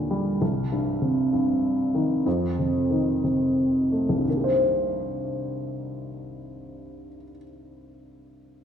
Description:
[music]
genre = pop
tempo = 57-66 BPM (dotted quarters)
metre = 6/8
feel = straight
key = C minor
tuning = A4 = 441 Hz
[part]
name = dark upright piano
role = solo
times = 0.0-8.6 s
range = C2 to C5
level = -23 LUFS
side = equal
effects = slapback echo
[sound]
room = wet concert hall reverb, RT60 2.1 s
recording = none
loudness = -22 LUFS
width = side -8 dB against mid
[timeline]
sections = 0.0-4.3 A section; 4.3-8.5 B section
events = slowing down 0.4-4.3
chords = 0.4 Cm; 2.3 F7; 4.3 Cm7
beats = | 0.42 1.33 | 2.26 3.24 | 4.27 5.32 | 6.36 7.41

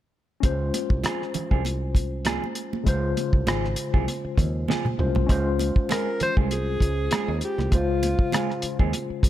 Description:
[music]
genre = lush 1970s-style soul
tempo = 99 BPM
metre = 4/4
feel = swing 54% on 16ths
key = unclear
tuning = A4 = 440 Hz
[part]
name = tine electric piano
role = accompaniment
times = 0.4-9.3 s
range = Db3 to C5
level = -29 LUFS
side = left 4 dB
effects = medium stereo tremolo
[part]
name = fingered electric bass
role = bass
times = 0.4-9.3 s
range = Ab1 to Eb2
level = -27 LUFS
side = equal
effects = none
[part]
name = cloth-damped thuddy drum kit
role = drums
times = 0.4-9.3 s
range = hi-hat, kick drum, rim click, snare drum, toms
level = -23 LUFS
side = equal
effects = none
[part]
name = congas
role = percussion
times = 0.4-9.1 s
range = none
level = -33 LUFS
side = right 6 dB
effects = none
[part]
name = electric guitar through a small old amp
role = riff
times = 1.0-8.9 s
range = F3 to Ab4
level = -32 LUFS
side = right 7 dB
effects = none
[part]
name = breathy alto saxophone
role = melody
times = 5.9-8.9 s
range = F4 to C5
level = -28 LUFS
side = equal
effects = none
[sound]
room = little or no reverb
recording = none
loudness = -22 LUFS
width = side -13 dB against mid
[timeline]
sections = 0.4-5.3 A section; 5.3-9.3 B section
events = drum fill 4.7-5.3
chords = 0.4 Dbmaj7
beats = | 0.43 1.04 1.65 2.25 | 2.86 3.47 4.08 4.68 | 5.29 5.90 6.51 7.11 | 7.72 8.33 8.94

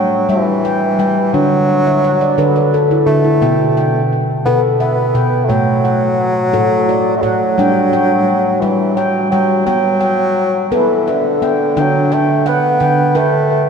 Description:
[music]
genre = world meditative, meditative tuned percussion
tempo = 58 BPM (dotted quarters)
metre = 6/8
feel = straight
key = unclear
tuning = A4 = 439 Hz
[part]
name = clear bassoon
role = melody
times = 0.0-13.7 s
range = D3 to B3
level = -16 LUFS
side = equal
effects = ping-pong delay
[part]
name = handpan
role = arpeggios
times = 0.0-13.7 s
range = A2 to G5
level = -14 LUFS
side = equal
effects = ping-pong delay
[sound]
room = wet cathedral reverb, RT60 4.9 s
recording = dreamy mix soaked in reverb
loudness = -11 LUFS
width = side -6 dB against mid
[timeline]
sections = 0.0-11.8 A section; 11.8-13.7 B section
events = handpan fill 1.9-3.4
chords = 0.0 G5; 1.3 D; 3.4 Emadd11/B; 5.5 A5; 7.6 G5; 9.7 Bm; 11.8 D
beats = 0.29 | 1.33 2.37 | 3.42 4.46 | 5.50 6.54 | 7.59 8.63 | 9.68 10.72 | 11.77 12.81

